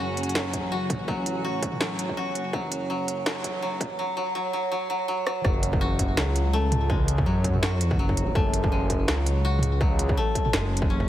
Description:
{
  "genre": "half-time drum and bass",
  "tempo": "165 BPM",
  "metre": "4/4",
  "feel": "swing 57% on 16ths, half-time",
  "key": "F# minor",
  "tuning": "A4 = 439 Hz",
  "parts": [
    { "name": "warm chamber string section", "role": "sustained chords", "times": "0.0-4.0 s", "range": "C#3 to F#4", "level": "-33 LUFS", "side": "right 1 dB", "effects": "sidechain pumping" },
    { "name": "koto", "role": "arpeggios", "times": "0.0-11.1 s", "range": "E3 to F#4", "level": "-29 LUFS", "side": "left 1 dB", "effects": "tape echo" },
    { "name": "dark detuned saw bass", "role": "bass", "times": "0.0-11.1 s", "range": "F#1 to F#2", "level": "-26 LUFS", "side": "equal", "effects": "none" },
    { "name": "industrial drum kit", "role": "drums", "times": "0.2-10.8 s", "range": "hi-hat, rim click, snare drum, toms", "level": "-29 LUFS", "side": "right 1 dB", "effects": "none" },
    { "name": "electronic kick drum", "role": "drums", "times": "0.5-11.1 s", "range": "none", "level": "-27 LUFS", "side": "equal", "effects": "distortion" }
  ],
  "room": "light reverb, digital ambience",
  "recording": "heavily compressed radio sound, multiband compression, high-pass filter",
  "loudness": "-23 LUFS",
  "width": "side -13 dB against mid",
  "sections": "0.0-5.4 A section; 5.4-11.1 B section",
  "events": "build-up 0.0-5.4; drum fill 5.2; drop 5.4-11.1",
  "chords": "0.0 F#m"
}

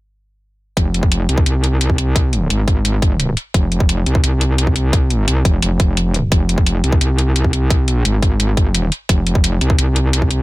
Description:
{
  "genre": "dark technical drum and bass",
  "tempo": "173 BPM",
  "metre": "4/4",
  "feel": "straight",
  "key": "F minor",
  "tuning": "A4 = 439 Hz",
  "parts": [
    { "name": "metallic wobble bass", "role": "bass", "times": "0.8-10.4 s", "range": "F1 to C2", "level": "-16 LUFS", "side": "equal", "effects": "chorus, overdrive, sidechain pumping" },
    { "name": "electronic hi-hat", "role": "drums", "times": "0.8-10.4 s", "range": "none", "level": "-21 LUFS", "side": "left 1 dB", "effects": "none" },
    { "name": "electronic kick drum", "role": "drums", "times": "0.8-10.3 s", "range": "none", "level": "-15 LUFS", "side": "equal", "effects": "none" }
  ],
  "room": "little or no reverb",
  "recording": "faint mains hum",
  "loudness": "-13 LUFS",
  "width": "side -19 dB against mid",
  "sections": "0.8-10.4 A section",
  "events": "none",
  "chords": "none"
}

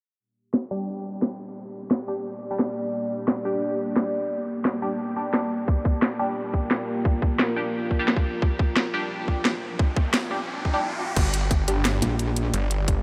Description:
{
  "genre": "dark technical drum and bass",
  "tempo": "175 BPM",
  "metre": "4/4",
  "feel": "straight",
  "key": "G minor",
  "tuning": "A4 = 440 Hz",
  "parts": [
    { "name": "deep dark ambient pad", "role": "sustained chords", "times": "1.6-13.0 s", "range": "Bb3 to D5", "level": "-33 LUFS", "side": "equal", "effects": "chorus, built-in reverb, sidechain pumping" },
    { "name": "drum and bass drum kit", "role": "drums", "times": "0.5-12.9 s", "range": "crash cymbal, hi-hat, snare drum", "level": "-30 LUFS", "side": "equal", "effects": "overdrive" },
    { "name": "band-passed chord stab", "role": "stabs", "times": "0.7-13.0 s", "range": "G3 to G4", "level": "-34 LUFS", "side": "equal", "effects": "phaser, subtle chorus, analog delay" },
    { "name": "electronic kick drum", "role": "drums", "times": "5.7-12.9 s", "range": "none", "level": "-25 LUFS", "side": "equal", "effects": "overdrive" },
    { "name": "riser", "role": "sound effects", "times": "9.5-11.2 s", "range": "none", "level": "-37 LUFS", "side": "equal", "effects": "none" },
    { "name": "snarling distorted saw bass", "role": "bass", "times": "11.2-13.0 s", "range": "G1", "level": "-27 LUFS", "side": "equal", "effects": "distortion, overdrive" },
    { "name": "metallic wobble bass", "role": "bass", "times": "12.0-12.5 s", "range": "Bb1", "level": "-26 LUFS", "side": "equal", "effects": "distortion, chorus" }
  ],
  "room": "moderate huge ambient reverb, RT60 7.0 s",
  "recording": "dreamy mix soaked in reverb, low-pass filter",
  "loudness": "-25 LUFS",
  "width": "mono",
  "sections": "0.2-11.2 A section; 11.2-13.0 B section",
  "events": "filter sweep on synth stab 0.2-11.2, 11.2-13.0; filter sweep 0.2-11.2; riser 9.5-11.2",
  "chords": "0.2 Gm"
}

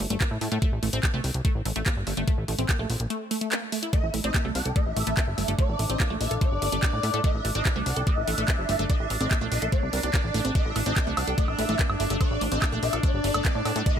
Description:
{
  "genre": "psychedelic trance",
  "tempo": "145 BPM",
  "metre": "4/4",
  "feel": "straight",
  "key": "A phrygian",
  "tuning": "A4 = 440 Hz",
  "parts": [
    { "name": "wide unison pluck", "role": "riff", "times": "0.0-13.9 s", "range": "A3 to Bb4", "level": "-32 LUFS", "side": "equal", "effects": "auto-pan, sidechain pumping, dub echo" },
    { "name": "plucky analog bass", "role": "bass", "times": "0.0-14.0 s", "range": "G1 to A2", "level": "-28 LUFS", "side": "equal", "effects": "none" },
    { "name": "drum and bass drum kit", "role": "drums", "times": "0.0-13.9 s", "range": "handclaps, hi-hat, woodblock", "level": "-31 LUFS", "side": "equal", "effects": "small room ambience" },
    { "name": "electronic kick drum", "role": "drums", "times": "0.2-13.9 s", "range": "none", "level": "-24 LUFS", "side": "equal", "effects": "small room ambience" },
    { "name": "swarming rave lead", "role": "melody", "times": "3.9-14.0 s", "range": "D5 to G5", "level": "-32 LUFS", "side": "equal", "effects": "chorus, phaser, sidechain pumping, dub echo" },
    { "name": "overtone-sweeping drone", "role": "sustained chords", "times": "4.5-14.0 s", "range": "D4", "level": "-32 LUFS", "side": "right 1 dB", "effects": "chorus, built-in reverb, sidechain pumping" }
  ],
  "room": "little or no reverb",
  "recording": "none",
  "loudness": "-23 LUFS",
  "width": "side -9 dB against mid",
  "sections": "0.0-14.0 A section",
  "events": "break 3.1-3.9",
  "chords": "0.0 A5"
}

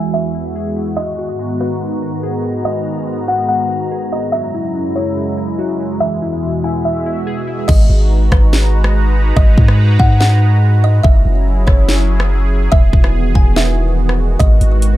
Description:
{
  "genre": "hip hop, atmospheric cloud-rap",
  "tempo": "143 BPM",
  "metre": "4/4",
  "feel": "half-time",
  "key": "G# minor",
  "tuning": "A4 = 440 Hz",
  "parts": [
    { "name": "kalimba", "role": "melody", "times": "0.0-15.0 s", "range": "B4 to G#5", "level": "-22 LUFS", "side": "equal", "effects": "ping-pong delay" },
    { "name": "sweeping resonant pad", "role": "sustained chords", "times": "0.0-15.0 s", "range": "E2 to A#5", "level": "-20 LUFS", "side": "right 1 dB", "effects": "chorus, sidechain pumping" },
    { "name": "glassy digital keys", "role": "arpeggios", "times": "0.0-7.7 s", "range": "E3 to G#4", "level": "-24 LUFS", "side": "left 4 dB", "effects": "chorus, ping-pong delay" },
    { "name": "long sustained 808-style bass", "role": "bass", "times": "7.7-15.0 s", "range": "E1 to G#2", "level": "-12 LUFS", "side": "equal", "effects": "none" },
    { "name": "house drum kit", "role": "drums", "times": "7.7-14.9 s", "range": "crash cymbal, hi-hat, kick drum, rim click, snare drum", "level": "-12 LUFS", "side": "equal", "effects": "none" }
  ],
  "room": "digital ambience",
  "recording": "dark, warm production, low-pass filter",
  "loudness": "-12 LUFS",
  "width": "side -15 dB against mid",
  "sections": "0.0-7.7 A section; 7.7-15.0 B section",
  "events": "filter sweep 0.0-7.7; hi-hats muted 7.7-14.4",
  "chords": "0.0 E; 1.0 G#m7; 4.3 F#7; 6.0 E; 7.7 G#m7; 11.0 F#7; 12.7 Emaj7; 14.4 G#m7"
}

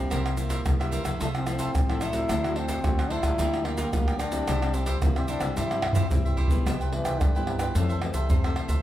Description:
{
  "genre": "samba and choro",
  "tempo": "110 BPM",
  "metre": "4/4",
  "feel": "straight",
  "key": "unclear",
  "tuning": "A4 = 444 Hz",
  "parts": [
    { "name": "growling trombone", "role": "melody", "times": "0.0-8.6 s", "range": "G2 to E4", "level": "-31 LUFS", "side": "left 2 dB", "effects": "none" },
    { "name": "cavaquinho", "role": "accompaniment", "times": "0.0-8.8 s", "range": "D4 to G5", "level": "-35 LUFS", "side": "right 2 dB", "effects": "none" },
    { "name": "nylon-string guitar", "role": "accompaniment", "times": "0.0-8.8 s", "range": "F2 to Gb4", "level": "-34 LUFS", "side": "left 2 dB", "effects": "none" },
    { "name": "upright bass", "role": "bass", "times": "0.0-8.8 s", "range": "A1 to G2", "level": "-30 LUFS", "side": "equal", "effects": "none" },
    { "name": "egg shaker, surdo, pandeiro and tamborim", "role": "percussion", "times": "0.1-8.8 s", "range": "none", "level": "-27 LUFS", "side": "equal", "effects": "none" }
  ],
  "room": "moderate large studio reverb, RT60 1.1 s",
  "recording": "band playing live in one room",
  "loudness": "-23 LUFS",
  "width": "side -13 dB against mid",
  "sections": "0.0-6.7 A section; 6.7-8.8 B section",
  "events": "drum fill 5.8-6.7",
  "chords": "0.1 C7; 1.2 Fmaj7/C; 2.3 D7; 3.4 Gm7/D; 4.5 Cmaj7; 7.8 Fmaj7"
}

